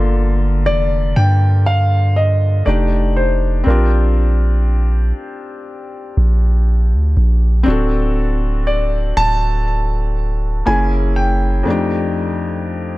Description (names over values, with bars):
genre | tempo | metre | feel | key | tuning
R&B | 60 BPM | 4/4 | swing 54% on 16ths | G minor | A4 = 441 Hz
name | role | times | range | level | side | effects
felt-muted upright piano | accompaniment | 0.0-13.0 s | F2 to A4 | -21 LUFS | left 2 dB | none
long sustained 808-style bass | bass | 0.0-11.6 s | D1 to G2 | -14 LUFS | equal | none
warm concert grand piano | melody | 0.7-13.0 s | Bb4 to A5 | -20 LUFS | equal | tape echo
room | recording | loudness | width
small room ambience | dark, warm production | -14 LUFS | side -18 dB against mid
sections
0.0-13.0 A section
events
break 11.7-13.0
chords
0.0 Gm7; 2.7 F13; 3.7 Bb69; 7.7 D7; 10.7 F#9; 11.7 F13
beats
0.67 1.67 2.67 | 3.67 4.67 5.67 6.67 | 7.67 8.67 9.67 10.67 | 11.67 12.67